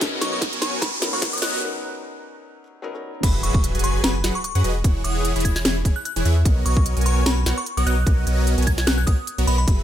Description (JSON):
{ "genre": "future bass", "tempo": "149 BPM", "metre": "4/4", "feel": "swing 55% on 16ths, half-time", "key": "B major", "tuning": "A4 = 441 Hz", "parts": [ { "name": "felt-muted upright piano", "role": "accompaniment", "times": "0.0-3.3 s", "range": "F#3 to A#4", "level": "-33 LUFS", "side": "left 3 dB", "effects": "sidechain pumping, tape echo" }, { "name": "supersaw chords", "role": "riff", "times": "0.0-9.8 s", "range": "E3 to B5", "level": "-27 LUFS", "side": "right 1 dB", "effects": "sidechain pumping" }, { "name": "saturated sub bass", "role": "bass", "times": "0.0-9.8 s", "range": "E1 to F#2", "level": "-21 LUFS", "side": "equal", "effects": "sidechain pumping" }, { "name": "electronic kick drum", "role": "drums", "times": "0.0-9.8 s", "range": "none", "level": "-19 LUFS", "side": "equal", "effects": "studio reverb" }, { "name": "trap drum kit", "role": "drums", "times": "0.0-9.8 s", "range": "crash cymbal, hi-hat, snare drum", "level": "-25 LUFS", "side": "equal", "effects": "studio reverb" }, { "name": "riser and impact", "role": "sound effects", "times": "0.0-4.8 s", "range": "none", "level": "-28 LUFS", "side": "equal", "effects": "none" }, { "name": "glassy synth bell", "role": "melody", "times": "0.2-9.7 s", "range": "B5 to G#6", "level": "-29 LUFS", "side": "left 1 dB", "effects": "chorus, sidechain pumping, tape echo" } ], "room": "digital ambience", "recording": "high-pass filter", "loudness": "-18 LUFS", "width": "side -11 dB against mid", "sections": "0.0-3.2 A section; 3.2-9.8 B section", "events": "build-up 0.0-3.2; drum fill 0.0-1.6; riser 0.0-1.6; filter sweep on synth bell 0.0-3.2; filter sweep 0.0-3.2; break 1.6-3.2; drop 3.2-9.8; impact 3.2-4.8", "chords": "0.0 Bmaj9; 3.2 F#7sus4; 4.8 E69; 6.5 Bmaj9" }